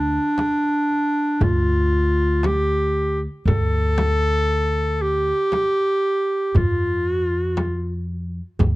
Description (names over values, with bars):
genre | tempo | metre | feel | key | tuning
Turkish makam ensemble | 117 BPM (eighths) | 10/8 | straight | unclear | A4 = 440 Hz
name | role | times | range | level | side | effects
clear clarinet | melody | 0.0-8.1 s | D4 to A4 | -20 LUFS | equal | none
upright bass | bass | 0.0-8.8 s | D2 to F2 | -22 LUFS | equal | none
darbuka | percussion | 0.4-8.8 s | none | -24 LUFS | right 2 dB | none
frame drum | percussion | 0.4-8.8 s | none | -25 LUFS | left 2 dB | none
room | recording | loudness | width
light reverb | dark, warm production | -18 LUFS | side -19 dB against mid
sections
0.0-8.8 A section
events
none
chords
none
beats
0.38 0.89 1.41 1.92 2.44 2.95 | 3.46 3.98 4.49 5.00 5.52 6.03 6.55 7.06 7.57 8.09 | 8.60